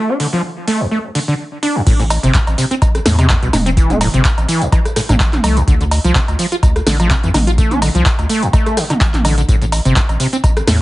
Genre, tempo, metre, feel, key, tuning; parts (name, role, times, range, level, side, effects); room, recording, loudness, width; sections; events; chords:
acid house; 126 BPM; 4/4; swing 55% on 16ths; A minor; A4 = 440 Hz
overdriven acid bass; riff; 0.0-10.8 s; A1 to F4; -17 LUFS; equal; distortion, wide subtle chorus, sidechain pumping, tape echo
electro analog drum machine; drums; 0.2-10.8 s; cowbell, crash cymbal, handclaps, hi-hat, rim click, snare drum, tambourine, toms; -18 LUFS; equal; overdrive
saturated sub bass; bass; 1.9-10.8 s; E1 to F2; -16 LUFS; equal; sidechain pumping
electronic kick drum; drums; 1.9-10.5 s; -15 LUFS; equal; overdrive
light reverb; heavily compressed radio sound, nothing above 10.7 kHz; -12 LUFS; side -18 dB against mid
0.0-1.9 A section; 1.9-10.8 B section
drop 1.9-10.8
0.0 D5; 1.9 Am; 5.7 Dm; 9.5 Am